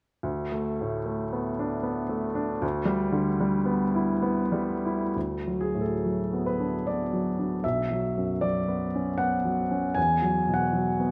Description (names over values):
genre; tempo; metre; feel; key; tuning
classical, impressionist solo piano; 62-80 BPM; 3/4; rubato; D major; A4 = 441 Hz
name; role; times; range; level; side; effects
clear baby grand piano; solo; 0.2-11.1 s; B1 to G#5; -27 LUFS; equal; none
room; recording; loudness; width
wet recital hall reverb, RT60 1.7 s; none; -27 LUFS; mono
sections
0.2-5.1 A section; 5.1-11.1 B section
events
none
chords
0.2 D5; 2.6 Em7/D; 5.1 D6; 7.6 Bmadd9; 10.0 Esus2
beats
| 0.24 1.08 1.86 | 2.62 3.39 4.22 | 5.15 6.03 6.84 | 7.63 8.43 9.20 | 9.96 10.72